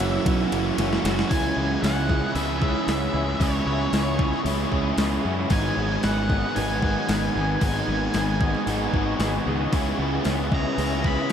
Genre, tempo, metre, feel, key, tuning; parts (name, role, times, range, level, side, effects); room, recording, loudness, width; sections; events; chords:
rock, shoegaze and dream pop; 114 BPM; 4/4; straight; A4 = 439 Hz
octave-fuzz lead guitar; melody; 0.0-11.3 s; C#5 to B5; -31 LUFS; equal; distortion, ping-pong delay
warbly tape-like pad; sustained chords; 0.0-11.3 s; B4 to D#6; -34 LUFS; equal; chorus, built-in reverb, phaser
electric guitar at the edge of break-up; arpeggios; 0.0-11.3 s; E3 to G#4; -36 LUFS; right 3 dB
biting overdriven guitar; riff; 0.0-11.3 s; F#2 to E4; -30 LUFS; equal
overdriven electric guitar; riff; 0.0-11.3 s; G#2 to G#4; -30 LUFS; left 7 dB; ensemble chorus
overdriven semi-hollow guitar; riff; 0.0-11.3 s; G#2 to A#4; -29 LUFS; right 8 dB; reverse reverb
fuzz picked electric bass; bass; 0.0-11.2 s; F#1 to F#2; -27 LUFS; equal; overdrive
crisp 8-bit digital drum machine; drums; 0.0-11.3 s; hi-hat, kick drum, ride cymbal, snare drum; -27 LUFS; equal; overdrive
moderate huge ambient reverb, RT60 7.6 s; dreamy mix soaked in reverb; -21 LUFS; side -8 dB against mid
0.0-1.3 A section; 1.3-11.3 B section
drum fill 0.8-1.3
0.0 F#7sus4; 1.3 C#m9; 5.5 G#m7; 9.7 C#m9